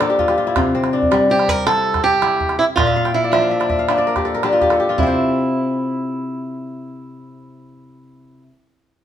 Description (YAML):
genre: west african traditional, West African string and xylophone music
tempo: 108 BPM (dotted quarters)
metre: 12/8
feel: straight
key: unclear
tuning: A4 = 441 Hz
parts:
  - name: kora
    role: arpeggios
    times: 0.0-8.5 s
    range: Bb2 to G5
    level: -18 LUFS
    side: left 2 dB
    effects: none
  - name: calabash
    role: percussion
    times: 0.0-5.2 s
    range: none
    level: -23 LUFS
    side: right 3 dB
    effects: none
  - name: picked swing-style acoustic guitar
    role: melody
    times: 1.3-8.4 s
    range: D4 to Bb4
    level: -19 LUFS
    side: right 3 dB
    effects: none
room: wet studio reverb, RT60 0.9 s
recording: band playing live in one room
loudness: -15 LUFS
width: side -10 dB against mid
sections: 0.0-5.0 A section; 5.0-7.2 B section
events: kora fill 0.0-0.6, 2.9-5.0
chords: 0.0 Bb; 0.6 C; 2.8 Bb; 5.0 N.C.